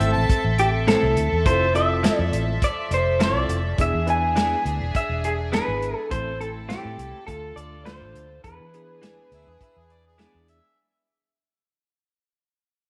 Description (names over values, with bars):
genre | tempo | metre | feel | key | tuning
straight-eighth soul blues | 103 BPM | 4/4 | swing 54% on 16ths | unclear | A4 = 440 Hz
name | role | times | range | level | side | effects
electric guitar through a small old amp | melody | 0.0-10.1 s | G4 to G#5 | -27 LUFS | equal | none
warm harmonica | second line | 0.0-0.5, 9.3-10.8 s | E4 to A5 | -29 LUFS | equal | overdrive
tine electric piano | accompaniment | 0.0-10.6 s | A3 to B4 | -33 LUFS | equal | overdrive
warm studio string section | sustained chords | 0.0-10.7 s | F3 to E5 | -34 LUFS | equal | none
vintage muted fingered electric bass | bass | 0.0-10.6 s | E1 to E3 | -28 LUFS | equal | none
warm soul drum kit | drums | 0.0-10.6 s | hi-hat, kick drum, snare drum | -28 LUFS | equal | none
direct-recorded clean electric guitar | stabs | 0.9-10.4 s | A2 to A4 | -34 LUFS | equal | subtle chorus
room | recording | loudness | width
moderate echo chamber reverb, RT60 1.8 s, studio reverb | none | -22 LUFS | mono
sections
0.0-10.8 A section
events
fade-out 0.0-10.8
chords
0.0 Am; 1.5 Fmaj7; 3.8 E7; 6.1 Am; 7.3 Dm; 8.4 E7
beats
0.29 0.87 | 1.46 2.04 2.62 3.20 | 3.78 4.37 4.95 5.53 | 6.11 6.69 7.28 7.86 | 8.44 9.02 9.60 10.19